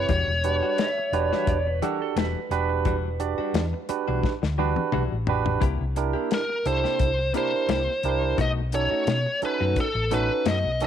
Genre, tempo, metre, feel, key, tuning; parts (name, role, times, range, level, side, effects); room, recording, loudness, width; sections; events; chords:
straight-eighth soul blues; 87 BPM; 4/4; swing 54% on 16ths; A4 = 444 Hz
biting lead guitar; melody; 0.0-1.8, 6.3-10.9 s; A4 to D#5; -25 LUFS; left 1 dB; overdrive, slapback echo
barky tine electric piano; accompaniment; 0.0-10.9 s; C3 to D5; -28 LUFS; right 11 dB
hollow-body short-scale fingered electric bass; bass; 0.0-10.9 s; E1 to B2; -27 LUFS; left 1 dB
direct-recorded clean electric guitar; stabs; 0.1-10.8 s; B2 to G4; -34 LUFS; left 12 dB; tremolo
warm soul drum kit; drums; 0.1-10.9 s; hi-hat, kick drum, snare drum, toms; -28 LUFS; left 4 dB
electric guitar through a small old amp; second line; 0.8-3.9 s; A4 to E5; -33 LUFS; right 10 dB
light reverb, small room ambience; 1960s-style stereo with parts hard left and right; -22 LUFS; side -9 dB against mid
0.0-10.9 A section
drum fill 4.2-5.6
0.1 Em9; 5.6 C7; 8.4 B7